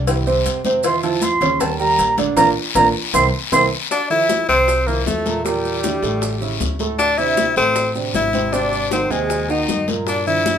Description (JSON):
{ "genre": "Afro-Cuban jazz", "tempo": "156 BPM", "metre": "4/4", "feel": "straight", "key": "F major", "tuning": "A4 = 435 Hz", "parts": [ { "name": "upright bass", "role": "bass", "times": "0.0-10.6 s", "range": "Ab1 to G2", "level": "-26 LUFS", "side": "left 1 dB", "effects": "none" }, { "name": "warm grand piano", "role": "accompaniment", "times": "0.1-10.6 s", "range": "A2 to D5", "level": "-22 LUFS", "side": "right 5 dB", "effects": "none" }, { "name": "congas", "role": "percussion", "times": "0.1-10.6 s", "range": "none", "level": "-28 LUFS", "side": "left 4 dB", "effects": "none" }, { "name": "cowbell and bongos", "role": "percussion", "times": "0.1-10.6 s", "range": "none", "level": "-27 LUFS", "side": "left 8 dB", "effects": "none" }, { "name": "guiro", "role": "percussion", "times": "0.1-10.6 s", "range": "none", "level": "-29 LUFS", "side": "left 7 dB", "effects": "none" }, { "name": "maracas", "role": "percussion", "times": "0.1-10.6 s", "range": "none", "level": "-31 LUFS", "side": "right 5 dB", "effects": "none" }, { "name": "mellow silver concert flute", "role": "second line", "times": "0.8-10.6 s", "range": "G4 to C6", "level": "-20 LUFS", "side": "right 2 dB", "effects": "none" }, { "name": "breathy tenor saxophone", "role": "melody", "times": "3.9-10.6 s", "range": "G3 to E4", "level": "-19 LUFS", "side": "left 4 dB", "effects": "none" } ], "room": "moderate club reverb, RT60 0.5 s", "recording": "minimal, uncompressed stereo recording", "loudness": "-15 LUFS", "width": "side -8 dB against mid", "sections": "0.0-3.9 A section; 3.9-10.6 B section", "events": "flute solo 0.0-3.9; band accent 2.4-3.9; drum fill 3.1-3.9", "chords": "0.1 C; 0.8 F5; 1.6 Eb; 2.4 Bb; 3.1 C7; 3.9 Fmaj7; 5.4 Em7b5; 6.2 A7; 7.0 Dsus2; 8.5 Ab9; 10.1 Gm7" }